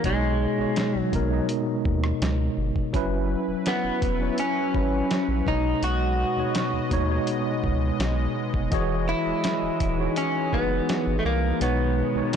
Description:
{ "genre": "contemporary R&B", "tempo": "83 BPM", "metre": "4/4", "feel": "straight", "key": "B major", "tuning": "A4 = 440 Hz", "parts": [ { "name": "direct-recorded clean electric guitar", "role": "melody", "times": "0.0-12.4 s", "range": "G#3 to F#4", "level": "-27 LUFS", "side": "left 1 dB", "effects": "wide subtle chorus, digital delay" }, { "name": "mellow tine electric piano", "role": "accompaniment", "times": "0.0-12.4 s", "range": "B2 to D#5", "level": "-27 LUFS", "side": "equal", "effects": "medium stereo tremolo" }, { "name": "warm sub bass", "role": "bass", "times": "0.0-12.2 s", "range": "D#1 to D#2", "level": "-27 LUFS", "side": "equal", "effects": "none" }, { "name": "dusty soul sampler-style drum kit", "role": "drums", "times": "0.0-12.4 s", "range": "hi-hat, kick drum, rim click, snare drum", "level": "-29 LUFS", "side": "equal", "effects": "vintage 12-bit sampler grit" }, { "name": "warm analog pad", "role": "sustained chords", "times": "2.9-12.4 s", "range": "D#3 to D#5", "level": "-34 LUFS", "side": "equal", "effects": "chorus" } ], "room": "light reverb", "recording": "blown-out, overdriven recording, overdrive", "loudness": "-22 LUFS", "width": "side -8 dB against mid", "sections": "0.0-12.4 A section", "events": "kick muted 11.6-12.4", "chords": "0.0 B69; 2.9 F#7sus4; 5.5 B69; 8.7 Emaj13; 11.6 B69", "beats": "| 0.04 0.77 1.49 2.21 | 2.94 3.66 4.38 5.11 | 5.83 6.55 7.27 8.00 | 8.72 9.44 10.16 10.89 | 11.61 12.33" }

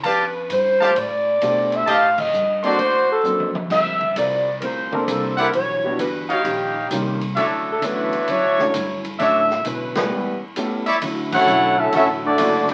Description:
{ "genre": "jazz, big band swing", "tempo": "131 BPM", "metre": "4/4", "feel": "swing 67% on 8ths", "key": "D major", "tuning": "A4 = 440 Hz", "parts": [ { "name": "bright trumpet section", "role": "stabs", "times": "0.0-11.0 s", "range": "D4 to C6", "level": "-24 LUFS", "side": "equal", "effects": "none" }, { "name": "upright bass", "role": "bass", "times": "0.0-12.7 s", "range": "F#1 to B2", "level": "-34 LUFS", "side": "equal", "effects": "none" }, { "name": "swinging big-band drum kit", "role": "drums", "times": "0.0-12.7 s", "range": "crash cymbal, hi-hat, kick drum, ride cymbal, snare drum, toms", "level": "-32 LUFS", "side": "equal", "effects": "none" }, { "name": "mellow saxophone section", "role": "melody", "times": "0.1-10.4 s", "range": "G4 to F5", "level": "-22 LUFS", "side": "equal", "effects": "none" }, { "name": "clear concert grand piano", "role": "accompaniment", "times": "1.4-10.8 s", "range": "F#3 to C5", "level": "-29 LUFS", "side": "equal", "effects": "none" }, { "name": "archtop guitar, miked and amplified", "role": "accompaniment", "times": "3.7-12.7 s", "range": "A2 to Bb4", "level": "-33 LUFS", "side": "equal", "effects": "none" }, { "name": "warm trombone section", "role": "second line", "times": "10.0-12.7 s", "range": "E3 to G4", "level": "-25 LUFS", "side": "equal", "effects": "none" }, { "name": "dark saxophone section", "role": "sustained chords", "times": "11.0-12.7 s", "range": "D3 to E4", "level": "-31 LUFS", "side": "equal", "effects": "none" }, { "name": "clear trumpet section", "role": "melody", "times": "11.3-12.7 s", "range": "A3 to F#5", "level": "-19 LUFS", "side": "equal", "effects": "none" } ], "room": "wet club reverb, RT60 0.7 s", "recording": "very old 78 rpm record, vinyl crackle", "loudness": "-20 LUFS", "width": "mono", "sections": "0.0-11.0 A section; 11.0-12.7 B section", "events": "band accent 2.1, 9.9, 11.3; drum fill 3.2-3.7; break 10.1-11.0", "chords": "0.0 F69; 1.9 Am7b5; 2.8 D7b13; 3.7 Gm11; 5.5 Em9; 6.5 Eb9; 7.4 Dmaj9; 10.1 A7; 11.0 Dmaj9", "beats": "| 0.04 0.50 0.96 1.42 | 1.87 2.33 2.79 3.25 | 3.71 4.16 4.62 5.08 | 5.54 5.99 6.45 6.91 | 7.37 7.82 8.28 8.74 | 9.20 9.65 10.11 10.57 | 11.02 11.48 11.94 12.39" }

